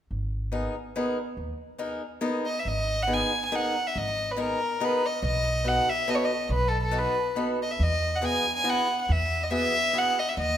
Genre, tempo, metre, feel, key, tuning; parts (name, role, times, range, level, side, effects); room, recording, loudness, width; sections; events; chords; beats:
musette waltz; 140 BPM; 3/4; straight; G# minor; A4 = 440 Hz
upright bass; bass; 0.1-10.6 s; G#1 to E2; -29 LUFS; equal
picked acoustic archtop guitar; accompaniment; 0.5-10.2 s; B3 to A#4; -30 LUFS; left 1 dB
rich violin; melody; 2.5-10.6 s; A4 to G#5; -26 LUFS; equal
moderate concert hall reverb, RT60 2.0 s; minimal, uncompressed stereo recording; -24 LUFS; side -10 dB against mid
0.1-2.7 A section; 2.7-10.6 B section
0.1 G#madd9; 5.2 B7; 7.8 Eadd9
| 0.10 0.53 0.95 | 1.38 1.80 2.23 | 2.66 3.09 3.52 | 3.95 4.37 4.80 | 5.22 5.65 6.08 | 6.50 6.93 7.36 | 7.80 8.23 8.66 | 9.09 9.52 9.95 | 10.37